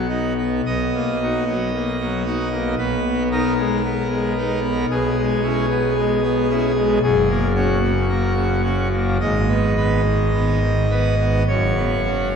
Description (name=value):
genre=classical, chorale-style piece for pipe organ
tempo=52-57 BPM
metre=4/4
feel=rubato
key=unclear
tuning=A4 = 440 Hz
part: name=pipe organ, full organ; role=solo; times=0.0-12.4 s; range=F#1 to D#5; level=-17 LUFS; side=equal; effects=none
room=wet church reverb, RT60 3.2 s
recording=heard from further back in the room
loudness=-17 LUFS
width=side -6 dB against mid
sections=0.0-12.4 A section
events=none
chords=0.0 B; 0.7 D#m/B; 2.8 G#m/B; 4.9 C#m/B; 7.0 F#; 9.2 G#m; 11.5 F#sus4